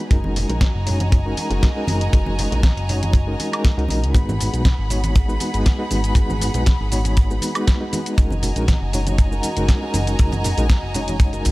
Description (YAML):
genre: nu-disco, nu disco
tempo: 119 BPM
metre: 4/4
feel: straight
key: unclear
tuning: A4 = 440 Hz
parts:
  - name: mellow reed electric piano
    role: accompaniment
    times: 0.0-11.5 s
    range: G#3 to C#5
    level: -26 LUFS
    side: equal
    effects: fast tremolo, low-pass filter, analog delay
  - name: dark studio violin section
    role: sustained chords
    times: 0.0-11.5 s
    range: F#4 to B5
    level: -28 LUFS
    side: equal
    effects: sidechain pumping
  - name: chorused synth bass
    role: bass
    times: 0.1-11.5 s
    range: D#1 to C#2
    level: -22 LUFS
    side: equal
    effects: tube saturation
  - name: house drum kit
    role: drums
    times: 0.1-11.5 s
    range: cabasa, hi-hat, snare drum, woodblock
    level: -28 LUFS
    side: equal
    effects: none
  - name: kick drum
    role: drums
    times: 0.1-11.5 s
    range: none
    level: -16 LUFS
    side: equal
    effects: none
  - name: congas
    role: percussion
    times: 0.2-11.5 s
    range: none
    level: -30 LUFS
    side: right 2 dB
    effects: none
room: small room ambience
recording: none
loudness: -17 LUFS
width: side -20 dB against mid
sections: 0.0-11.5 A section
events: none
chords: 0.1 F#69; 4.1 G#m7; 8.2 F#69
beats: | 0.11 0.62 1.12 1.63 | 2.13 2.63 3.14 3.64 | 4.15 4.65 5.16 5.66 | 6.16 6.67 7.17 7.68 | 8.18 8.69 9.19 9.69 | 10.20 10.70 11.21